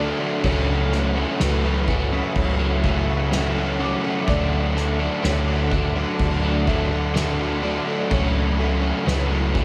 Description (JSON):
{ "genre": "post-rock", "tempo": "63 BPM", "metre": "4/4", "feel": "straight", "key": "unclear", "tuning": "A4 = 440 Hz", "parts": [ { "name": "muted studio string section", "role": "sustained chords", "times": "0.0-9.6 s", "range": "D4 to F#5", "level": "-34 LUFS", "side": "equal", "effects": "none" }, { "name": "felt-muted upright piano", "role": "arpeggios", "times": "0.0-9.6 s", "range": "B4 to D6", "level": "-36 LUFS", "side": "equal", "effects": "ensemble chorus, delay" }, { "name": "overdriven electric guitar", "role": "riff", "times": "0.0-9.6 s", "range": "C#3 to D4", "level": "-29 LUFS", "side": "equal", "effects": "none" }, { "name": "overdriven semi-hollow guitar", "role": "riff", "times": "0.0-9.6 s", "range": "C#3 to D4", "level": "-28 LUFS", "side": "equal", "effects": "subtle chorus" }, { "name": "hollow-body short-scale fingered electric bass", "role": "bass", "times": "0.0-9.6 s", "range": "C#2 to D2", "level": "-26 LUFS", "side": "equal", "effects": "none" }, { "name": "soft-mallet drum kit", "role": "drums", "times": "0.4-9.6 s", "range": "crash cymbal, kick drum, snare drum", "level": "-29 LUFS", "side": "equal", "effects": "none" } ], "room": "wet huge ambient reverb, RT60 8.6 s", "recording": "dreamy mix soaked in reverb", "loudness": "-22 LUFS", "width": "mono", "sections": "0.0-9.6 A section", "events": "none", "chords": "0.4 F#m7/C#; 4.3 Dmaj7; 8.1 F#m7/C#" }